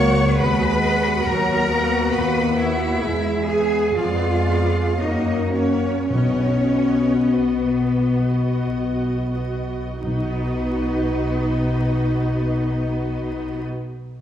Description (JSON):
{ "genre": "classical, slow romantic movement for symphony orchestra", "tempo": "42-70 BPM", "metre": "3/4", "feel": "rubato", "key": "B major", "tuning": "A4 = 445 Hz", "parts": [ { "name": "warm symphonic violin section", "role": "melody", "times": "0.0-13.6 s", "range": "C#5 to F#5", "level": "-33 LUFS", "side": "left 1 dB", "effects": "none" }, { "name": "rich symphonic violin section", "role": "second line", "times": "0.0-13.6 s", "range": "B4 to C#6", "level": "-30 LUFS", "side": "left 2 dB", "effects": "none" }, { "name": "rich studio viola section", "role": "accompaniment", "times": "0.0-13.6 s", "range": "A#3 to G#4", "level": "-27 LUFS", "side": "right 2 dB", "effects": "none" }, { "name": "dark French horn section", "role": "sustained chords", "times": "0.0-13.6 s", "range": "F#3 to F#4", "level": "-23 LUFS", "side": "left 2 dB", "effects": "none" }, { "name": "rich symphonic cello section", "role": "bass", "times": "0.0-13.6 s", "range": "B3 to C#5", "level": "-25 LUFS", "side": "right 1 dB", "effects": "none" }, { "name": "rich symphonic double bass section", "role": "bass", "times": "0.0-13.6 s", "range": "B1 to F#2", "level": "-24 LUFS", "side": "equal", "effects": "none" }, { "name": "timpani", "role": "percussion", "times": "6.1-13.6 s", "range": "B2", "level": "-25 LUFS", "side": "equal", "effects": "none" } ], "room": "wet recital hall reverb, RT60 1.3 s", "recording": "heard from further back in the room, vinyl crackle", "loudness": "-18 LUFS", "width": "side -10 dB against mid", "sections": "0.0-10.0 A section; 10.0-14.0 B section", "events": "slowing down 1.7-10.0", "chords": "0.4 B/D#; 3.0 E; 4.0 Fdim7; 5.0 F#; 6.1 B", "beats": "| 0.37 1.24 2.12 | 3.01 3.95 4.98 | 6.11 7.35 8.65 | 10.03 11.35 12.72" }